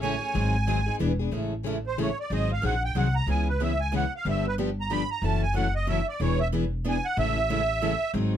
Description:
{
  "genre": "acoustic string swing (jazz manouche)",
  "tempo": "185 BPM",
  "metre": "3/4",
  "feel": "swing 59% on 8ths",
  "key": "A major",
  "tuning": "A4 = 440 Hz",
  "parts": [
    { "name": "musette accordion", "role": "melody", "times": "0.0-8.1 s", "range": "B4 to B5", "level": "-28 LUFS", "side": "right 3 dB", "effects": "none" },
    { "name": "picked plugged-in steel-string acoustic guitar", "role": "accompaniment", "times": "0.0-8.3 s", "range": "C#3 to G#4", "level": "-31 LUFS", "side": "left 8 dB", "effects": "none" },
    { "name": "picked steel-string acoustic guitar", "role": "accompaniment", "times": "0.0-8.3 s", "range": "C#3 to B4", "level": "-33 LUFS", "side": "right 6 dB", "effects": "none" },
    { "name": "upright bass", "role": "bass", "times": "0.0-8.4 s", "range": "E1 to C#2", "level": "-28 LUFS", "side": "equal", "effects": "none" }
  ],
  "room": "light reverb",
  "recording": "close, detailed microphones",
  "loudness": "-24 LUFS",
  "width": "side -10 dB against mid",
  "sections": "0.0-1.3 A section; 1.3-8.4 B section",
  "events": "accordion solo 1.3-8.4",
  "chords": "0.4 Ab7; 1.0 E7; 1.3 Amaj7; 2.3 G#7; 3.3 C#m7; 4.3 G7; 5.2 F#m7; 6.2 E7; 7.2 Amaj7",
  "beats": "0.04 | 0.36 0.69 1.01 | 1.34 1.66 1.99 | 2.31 2.63 2.96 | 3.28 3.61 3.93 | 4.26 4.58 4.91 | 5.23 5.55 5.88 | 6.20 6.53 6.85 | 7.17 7.50 7.82 | 8.14"
}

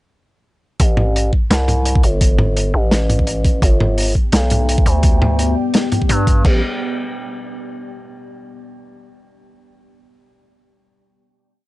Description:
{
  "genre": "half-time drum and bass",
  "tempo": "170 BPM",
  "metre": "4/4",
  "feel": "swing 56% on 16ths, half-time",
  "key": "A minor",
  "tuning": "A4 = 440 Hz",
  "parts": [
    { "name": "growling 808-style bass", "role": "bass", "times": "0.8-6.6 s", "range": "G1 to G2", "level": "-16 LUFS", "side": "equal", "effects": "none" },
    { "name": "crunchy breakbeat drum kit", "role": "drums", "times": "0.8-6.5 s", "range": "crash cymbal, hi-hat, snare drum, toms", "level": "-20 LUFS", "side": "equal", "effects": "none" },
    { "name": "electronic kick drum", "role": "drums", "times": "0.8-6.5 s", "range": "none", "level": "-14 LUFS", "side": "equal", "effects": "overdrive" },
    { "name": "deep dark ambient pad", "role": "sustained chords", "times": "4.4-6.6 s", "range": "B3 to G5", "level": "-24 LUFS", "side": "left 2 dB", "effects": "chorus, built-in reverb, sidechain pumping" }
  ],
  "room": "little or no reverb",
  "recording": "nothing above 10.5 kHz",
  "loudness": "-13 LUFS",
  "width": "side -19 dB against mid",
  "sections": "0.8-6.4 drop; 6.4-7.9 final chord",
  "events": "drop 0.8-6.4",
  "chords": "0.8 Am; 3.6 G; 6.4 Am",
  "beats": "| 0.80 1.15 1.50 1.86 | 2.21 2.56 2.92 3.27 | 3.62 3.98 4.33 4.68 | 5.03 5.39 5.74 6.09 | 6.45"
}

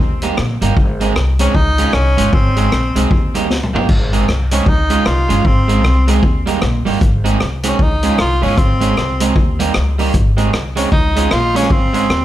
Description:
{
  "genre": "ska",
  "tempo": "154 BPM",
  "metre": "4/4",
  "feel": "swing 61% on 8ths",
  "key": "Ab major",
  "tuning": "A4 = 440 Hz",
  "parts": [
    { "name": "upright bass", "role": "bass", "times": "0.0-12.2 s", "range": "G1 to Eb2", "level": "-17 LUFS", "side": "equal", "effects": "tube saturation" },
    { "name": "electric guitar at the edge of break-up", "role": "accompaniment", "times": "0.2-12.1 s", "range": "G3 to Ab4", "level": "-19 LUFS", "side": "right 4 dB", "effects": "tape echo" },
    { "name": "street-band drum kit", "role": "drums", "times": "0.2-12.2 s", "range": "crash cymbal, hi-hat, kick drum, rim click, snare drum, toms", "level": "-17 LUFS", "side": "equal", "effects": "none" },
    { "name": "breathy tenor saxophone", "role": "melody", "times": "1.4-12.2 s", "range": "C4 to F4", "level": "-19 LUFS", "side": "equal", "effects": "tape echo" }
  ],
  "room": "light reverb",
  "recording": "none",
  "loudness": "-12 LUFS",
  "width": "side -13 dB against mid",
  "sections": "0.0-3.9 A section; 3.9-12.2 A section",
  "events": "drum fill 3.5-3.9",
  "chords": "0.0 Eb; 0.8 Ab; 1.5 Db; 2.3 Ab; 3.1 Eb; 3.9 Ab; 4.7 Db; 5.4 Ab; 6.2 Eb; 7.0 Ab; 7.8 Db; 8.6 Ab; 9.4 Eb; 10.1 Ab; 10.9 Db; 11.7 Ab",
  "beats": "0.37 | 0.76 1.15 1.54 1.93 | 2.32 2.71 3.10 3.50 | 3.89 4.28 4.67 5.06 | 5.45 5.84 6.23 6.62 | 7.01 7.40 7.79 8.18 | 8.57 8.96 9.36 9.75 | 10.14 10.53 10.92 11.31 | 11.70 12.09"
}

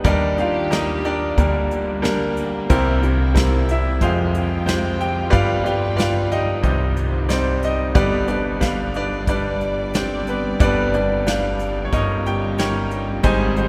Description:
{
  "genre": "acoustic folk-pop ballad",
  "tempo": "91 BPM",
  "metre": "4/4",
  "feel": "straight",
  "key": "unclear",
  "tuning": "A4 = 440 Hz",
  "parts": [
    { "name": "bright grand piano", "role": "melody", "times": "0.0-13.7 s", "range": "F1 to Ab5", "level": "-22 LUFS", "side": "equal", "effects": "none" },
    { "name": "upright bass", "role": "bass", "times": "0.0-13.7 s", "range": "G1 to G2", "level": "-26 LUFS", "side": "equal", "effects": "none" },
    { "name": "soft brush drum kit", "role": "drums", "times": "0.0-13.7 s", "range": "hi-hat, kick drum, snare drum", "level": "-27 LUFS", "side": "equal", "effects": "none" },
    { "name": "warm chamber string section", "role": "sustained chords", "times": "0.1-13.7 s", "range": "C3 to G5", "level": "-33 LUFS", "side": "equal", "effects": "none" }
  ],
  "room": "wet cathedral reverb, RT60 6.0 s",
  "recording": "recorded in a church or concert hall",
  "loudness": "-20 LUFS",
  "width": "mono",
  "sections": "0.1-13.7 A section",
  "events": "none",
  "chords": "0.1 Ebmaj7; 1.4 Gm/D; 2.7 C7; 4.0 Fmadd9; 5.3 G7; 6.6 Cmadd9; 7.9 G; 11.9 Eb7/G",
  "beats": "| 0.05 0.71 1.38 2.04 | 2.69 3.35 4.01 4.67 | 5.32 5.98 6.63 7.29 | 7.95 8.61 9.27 9.94 | 10.60 11.27 11.93 12.59 | 13.25"
}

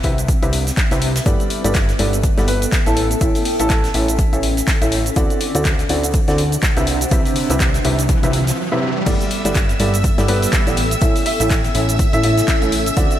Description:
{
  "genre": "piano house",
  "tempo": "123 BPM",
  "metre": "4/4",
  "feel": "swing 58% on 16ths",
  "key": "G major",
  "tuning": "A4 = 440 Hz",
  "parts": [
    { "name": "clear upright piano", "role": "riff", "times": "0.0-13.2 s", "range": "G2 to E5", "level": "-21 LUFS", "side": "equal", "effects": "sidechain pumping, analog delay" },
    { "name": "fat analog bass", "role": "bass", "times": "0.0-13.1 s", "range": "G1 to D2", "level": "-21 LUFS", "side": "equal", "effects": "sidechain pumping" },
    { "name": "electronic kick drum", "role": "drums", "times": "0.0-13.1 s", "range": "none", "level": "-18 LUFS", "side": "equal", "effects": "overdrive" },
    { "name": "house drum kit", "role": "drums", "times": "0.0-13.2 s", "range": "cabasa, crash cymbal, handclaps, hi-hat", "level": "-24 LUFS", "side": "equal", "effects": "none" },
    { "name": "soft brush drum kit", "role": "drums", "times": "0.0-13.1 s", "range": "hi-hat, snare drum", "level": "-33 LUFS", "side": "left 3 dB", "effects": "none" },
    { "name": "granular cloud pad", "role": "texture", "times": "0.0-13.2 s", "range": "B3 to G5", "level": "-26 LUFS", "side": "right 1 dB", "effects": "built-in reverb, sidechain pumping" },
    { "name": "warm baby grand piano", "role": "melody", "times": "2.5-4.1, 10.3-12.5 s", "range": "A4 to E5", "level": "-26 LUFS", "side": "equal", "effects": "analog delay" },
    { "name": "riser", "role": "sound effects", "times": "6.7-9.1 s", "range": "none", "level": "-27 LUFS", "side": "equal", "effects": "none" },
    { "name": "string machine, violins", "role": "sustained chords", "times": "9.1-13.2 s", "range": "E5 to E6", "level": "-26 LUFS", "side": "equal", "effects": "ensemble chorus, sidechain pumping" }
  ],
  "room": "light reverb, small room ambience",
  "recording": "none",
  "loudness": "-14 LUFS",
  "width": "side -12 dB against mid",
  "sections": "0.0-9.1 A section; 9.1-13.2 B section",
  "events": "riser 6.7-9.1; break 8.6-9.1; drop 9.1-13.2",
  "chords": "0.0 Cmaj7; 1.3 Gadd9; 3.0 A; 5.2 D7; 6.9 Cmaj7; 9.1 Gadd9; 10.8 A",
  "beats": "0.28 0.77 | 1.26 1.75 2.24 2.72 | 3.21 3.70 4.19 4.67 | 5.16 5.65 6.14 6.63 | 7.12 7.60 8.09 8.58 | 9.07 9.55 10.04 10.53 | 11.02 11.51 11.99 12.48 | 12.97"
}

